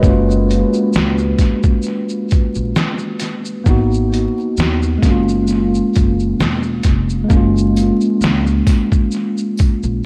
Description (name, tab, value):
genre	lo-fi hip hop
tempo	66 BPM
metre	4/4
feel	swing 56% on 16ths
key	F# major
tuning	A4 = 444 Hz
part	mellow tine electric piano	accompaniment	0.0-10.1 s	G#3 to B4	-19 LUFS	equal	cassette tape, tape echo
part	upright bass	bass	0.0-10.0 s	E1 to D#2	-21 LUFS	equal	none
part	trip hop sampler-style drum kit	drums	0.0-10.0 s	hi-hat, kick drum, shaker, snare drum	-19 LUFS	equal	tape echo
part	tambourine	percussion	7.8-9.8 s	none	-42 LUFS	equal	none
room	moderate plate reverb, RT60 2.8 s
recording	echo-heavy mix, vinyl crackle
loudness	-16 LUFS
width	mono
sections	0.0-7.3 A section; 7.3-10.1 B section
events	none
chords	0.0 F#maj9; 3.7 G#m7; 5.0 F#maj9